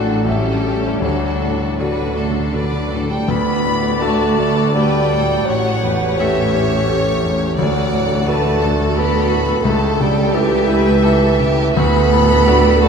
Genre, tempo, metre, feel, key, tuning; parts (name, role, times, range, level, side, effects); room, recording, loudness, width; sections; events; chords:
classical, romantic movement for piano and orchestra; 77-89 BPM; 3/4; rubato; D major; A4 = 439 Hz
clear chamber violin section; melody; 0.0-12.9 s; F#4 to D5; -26 LUFS; right 2 dB
clear grand piano; melody; 0.0-12.9 s; A1 to G5; -19 LUFS; left 2 dB
clear chamber violin section; second line; 0.0-12.9 s; F#4 to B5; -24 LUFS; left 2 dB
rich chamber viola section; accompaniment; 0.0-12.9 s; C#4 to D5; -24 LUFS; left 3 dB
mellow French horn section; sustained chords; 0.0-3.0 s; F#3 to D4; -29 LUFS; left 2 dB
clear studio double bass section; bass; 0.0-12.9 s; A1 to D2; -23 LUFS; equal
rich symphonic cello section; bass; 0.0-12.9 s; C#2 to D3; -23 LUFS; equal
timpani; percussion; 1.0-4.4 s; D3; -31 LUFS; right 5 dB
mellow bassoon; accompaniment; 2.5-12.9 s; D3 to B3; -19 LUFS; right 6 dB
wet cathedral reverb, RT60 5.0 s; in a vast, echoing space; -14 LUFS; side -6 dB against mid
0.0-3.3 A section; 3.3-12.9 A section
timpani fill 1.0-3.3
0.3 A7; 1.0 D; 5.5 A7; 7.6 D; 9.7 A7/C#; 11.8 D